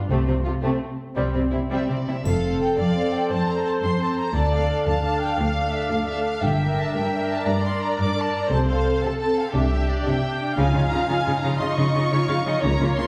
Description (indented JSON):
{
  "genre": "cinematic, heroic adventure film score",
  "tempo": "115 BPM (dotted quarters)",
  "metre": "12/8",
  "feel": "straight",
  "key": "F major",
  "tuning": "A4 = 440 Hz",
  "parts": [
    { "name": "warm symphonic violin section", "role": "melody", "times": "0.1-13.1 s", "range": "C4 to D6", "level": "-32 LUFS", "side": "equal", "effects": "none" },
    { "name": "clear symphonic violin section", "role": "second line", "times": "0.1-13.1 s", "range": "G3 to G5", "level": "-30 LUFS", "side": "equal", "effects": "none" },
    { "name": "clear symphonic viola section", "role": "accompaniment", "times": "0.1-13.1 s", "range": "Bb3 to Bb4", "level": "-29 LUFS", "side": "equal", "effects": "none" },
    { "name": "clear symphonic cello section", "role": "bass", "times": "0.1-13.0 s", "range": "D2 to Db3", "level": "-28 LUFS", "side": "equal", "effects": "none" },
    { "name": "rich chamber double bass section", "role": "bass", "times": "0.1-12.8 s", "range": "F1 to D2", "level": "-28 LUFS", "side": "equal", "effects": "none" },
    { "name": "triangle", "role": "percussion", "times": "2.3-2.9 s", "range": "none", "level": "-49 LUFS", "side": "equal", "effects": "none" }
  ],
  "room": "wet recital hall reverb, RT60 1.4 s",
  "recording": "recorded in a church or concert hall",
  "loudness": "-23 LUFS",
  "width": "mono",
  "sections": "0.0-2.3 A section; 2.3-13.1 B section",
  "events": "build-up 0.0-2.3",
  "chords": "0.1 F/C (rootless); 2.3 F; 4.3 Dm; 6.4 Gm; 8.5 F/C; 9.5 Cadd9; 10.6 Dbadd9",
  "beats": "| 0.10 0.63 1.17 1.72 | 2.26 2.78 3.30 3.83 | 4.35 4.87 5.39 5.91 | 6.43 6.95 7.47 7.99 | 8.51 9.03 9.55 10.06 | 10.57 11.09 11.60 12.11 | 12.63"
}